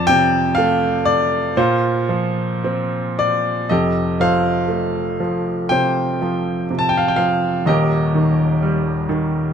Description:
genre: classical, lyrical solo piano.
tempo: 53-65 BPM.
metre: 4/4.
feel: rubato.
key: unclear.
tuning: A4 = 442 Hz.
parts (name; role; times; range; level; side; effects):
clear baby grand piano; solo; 0.0-9.5 s; Eb1 to A5; -16 LUFS; equal; none.
room: little or no reverb.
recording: close, detailed microphones.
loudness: -16 LUFS.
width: side -7 dB against mid.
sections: 0.0-3.7 A section; 3.7-9.5 B section.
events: none.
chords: 0.0 F6; 1.6 Bbsus2; 3.7 Fadd9; 7.7 Eb.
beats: 0.57 1.57 2.64 | 3.70 4.69 5.70 6.68 | 7.66 8.61.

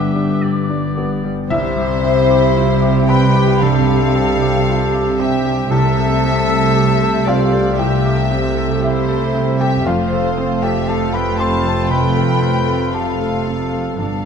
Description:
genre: cinematic, emotional film score for orchestra.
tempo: 58 BPM.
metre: 4/4.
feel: rubato.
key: C major.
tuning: A4 = 441 Hz.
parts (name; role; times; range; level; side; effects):
warm studio violin section; melody; 0.0-14.3 s; C5 to A5; -26 LUFS; left 4 dB; none.
clear clarinet; second line; 0.0-14.3 s; E4 to C5; -26 LUFS; left 1 dB; none.
clear oboe; second line; 0.0-1.5 s; D5 to E5; -32 LUFS; right 2 dB; none.
mellow hollow concert flute; second line; 0.0-14.3 s; E5 to D6; -25 LUFS; left 1 dB; none.
warm studio violin section; second line; 0.0-14.3 s; G4 to A5; -24 LUFS; left 4 dB; none.
felt-muted upright piano; accompaniment; 0.0-14.3 s; C2 to C6; -21 LUFS; equal; none.
rich studio viola section; accompaniment; 0.0-14.3 s; G3 to B4; -24 LUFS; right 1 dB; none.
dark French horn section; sustained chords; 0.0-14.3 s; G3 to G4; -26 LUFS; left 4 dB; none.
concert harp; arpeggios; 0.0-14.3 s; F2 to G5; -23 LUFS; left 9 dB; none.
dark studio cello section; bass; 0.0-14.3 s; F2 to C3; -21 LUFS; right 3 dB; none.
warm chamber double bass section; bass; 0.0-14.3 s; F1 to C2; -22 LUFS; right 6 dB; none.
room: moderate scoring stage reverb, RT60 1.9 s.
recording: dark, warm production.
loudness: -13 LUFS.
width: side -6 dB against mid.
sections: 0.0-1.5 A section; 1.5-14.3 B section.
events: none.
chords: 0.0 G; 1.5 C; 5.7 Am7/C; 9.9 F.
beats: 0.41 | 1.50 2.55 3.61 4.67 | 5.70 6.75 7.79 8.83 | 9.86 10.88 11.90 12.94 | 13.99.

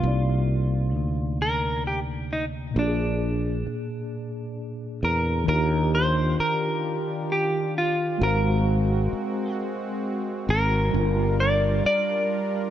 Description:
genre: slow six-eight R&B.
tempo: 44 BPM (dotted quarters).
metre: 6/8.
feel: straight.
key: Eb major.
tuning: A4 = 441 Hz.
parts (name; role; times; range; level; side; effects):
clean electric guitar; melody; 0.0-12.7 s; D4 to D5; -26 LUFS; equal; none.
mellow tine electric piano; accompaniment; 0.0-12.7 s; Bb2 to F5; -29 LUFS; equal; medium stereo tremolo.
sustaining fretless electric bass; bass; 0.0-11.9 s; G1 to Fb2; -24 LUFS; equal; none.
warm analog pad; sustained chords; 5.5-12.7 s; Eb3 to Bb4; -31 LUFS; equal; chorus.
room: digital ambience.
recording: none.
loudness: -22 LUFS.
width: side -11 dB against mid.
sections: 0.0-5.5 A section; 5.5-12.7 B section.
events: none.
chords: 0.0 Cm9; 2.8 Bb7; 5.5 Ebmaj9; 8.2 Ab13; 10.9 Gm7.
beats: | 0.02 1.39 | 2.75 4.12 | 5.48 6.84 | 8.21 9.57 | 10.93 12.30.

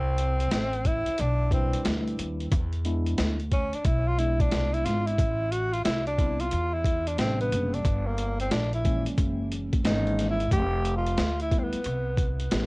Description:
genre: hip hop, jazz-hop.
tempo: 90 BPM.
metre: 4/4.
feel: swing 65% on 16ths.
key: A minor.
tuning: A4 = 440 Hz.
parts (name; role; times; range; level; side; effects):
breathy tenor saxophone; melody; 0.0-12.3 s; Bb3 to G4; -29 LUFS; equal; cassette tape, tape echo.
upright bass; bass; 0.0-12.7 s; F1 to E2; -28 LUFS; equal; none.
boom bap sampler-style drum kit; drums; 0.2-12.7 s; hi-hat, kick drum, snare drum; -27 LUFS; equal; cassette tape.
tine electric piano; accompaniment; 1.5-12.7 s; C3 to B4; -32 LUFS; left 1 dB; fast stereo tremolo, cassette tape.
room: little or no reverb.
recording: home recording on cassette.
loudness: -24 LUFS.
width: side -25 dB against mid.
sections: 0.0-12.7 A section.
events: tenor saxophone solo 0.0-12.7.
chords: 0.0 Cmaj7; 2.5 E7; 5.2 Am9; 7.9 Gm; 9.2 F#9; 10.5 Fmaj9#11.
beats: 0.52 1.19 1.85 | 2.52 3.19 3.85 4.52 | 5.18 5.85 6.52 7.18 | 7.85 8.52 9.19 9.85 | 10.52 11.19 11.85 12.52.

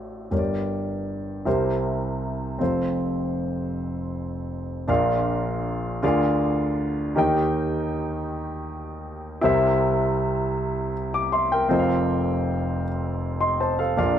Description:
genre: gospel.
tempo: 53 BPM (dotted quarters).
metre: 6/8.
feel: straight.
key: unclear.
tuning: A4 = 440 Hz.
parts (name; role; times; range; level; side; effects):
warm grand piano; solo; 0.0-14.2 s; F1 to D6; -22 LUFS; equal; none.
room: moderate stone room reverb, RT60 1.1 s.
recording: band playing live in one room.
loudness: -22 LUFS.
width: side -9 dB against mid.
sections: 0.0-4.9 A section; 4.9-14.2 B section.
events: none.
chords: 0.3 Gm; 1.5 C7; 2.6 F; 4.9 Bb; 6.0 Bb7/D; 7.2 Eb; 9.4 C7; 11.7 F.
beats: | 0.32 1.46 | 2.60 3.75 | 4.89 6.03 | 7.17 8.30 | 9.44 10.57 | 11.71 12.84 | 13.98.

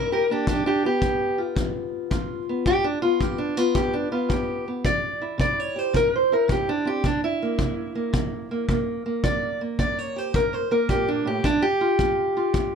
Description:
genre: acoustic country blues, solo or duo.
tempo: 109 BPM.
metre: 4/4.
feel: swing 67% on 8ths.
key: unclear.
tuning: A4 = 440 Hz.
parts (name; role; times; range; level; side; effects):
fingerpicked steel-string acoustic guitar; melody; 0.0-12.8 s; G2 to D5; -22 LUFS; equal; none.
kick drum; drums; 0.5-12.7 s; none; -27 LUFS; left 1 dB; none.
room: light reverb.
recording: none.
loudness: -21 LUFS.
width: side -6 dB against mid.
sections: 0.0-12.8 A section.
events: steel-string acoustic guitar solo 0.0-12.8.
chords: 0.5 G7; 4.9 C7; 9.2 A7b9 (rootless); 11.4 G7(no3).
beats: | 0.47 1.01 1.56 2.11 | 2.66 3.21 3.76 4.30 | 4.85 5.40 5.95 6.50 | 7.05 7.60 8.14 8.70 | 9.24 9.79 10.34 10.89 | 11.44 11.99 12.54.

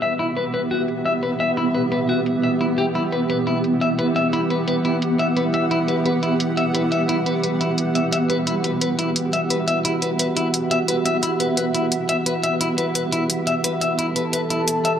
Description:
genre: dark technical drum and bass.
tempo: 174 BPM.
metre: 4/4.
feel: straight.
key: E minor.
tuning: A4 = 440 Hz.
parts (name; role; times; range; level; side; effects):
dark analog pad; sustained chords; 0.0-15.0 s; E4 to A5; -25 LUFS; right 1 dB; chorus.
clean electric guitar; arpeggios; 0.0-14.9 s; E4 to E5; -23 LUFS; left 3 dB; low-pass filter, dub echo.
electronic hi-hat; drums; 0.0-14.9 s; none; -25 LUFS; equal; overdrive, low-pass filter on hats, low-pass filter on snare, low-pass filter on cymbals.
granular cloud pad; texture; 0.0-15.0 s; B3 to F#5; -23 LUFS; right 2 dB; built-in reverb.
room: moderate lush hall reverb, RT60 2.1 s.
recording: none.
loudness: -18 LUFS.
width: side -8 dB against mid.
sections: 0.0-15.0 A section.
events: filter sweep on analog synth pad 0.0-15.0.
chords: 0.0 Em.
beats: | 0.19 0.54 0.88 1.23 | 1.57 1.92 2.26 2.61 | 2.95 3.30 3.64 3.99 | 4.33 4.68 5.02 5.37 | 5.71 6.06 6.40 6.75 | 7.09 7.43 7.78 8.12 | 8.47 8.81 9.16 9.50 | 9.85 10.19 10.54 10.88 | 11.23 11.57 11.92 12.26 | 12.61 12.95 13.30 13.64 | 13.99 14.33 14.68.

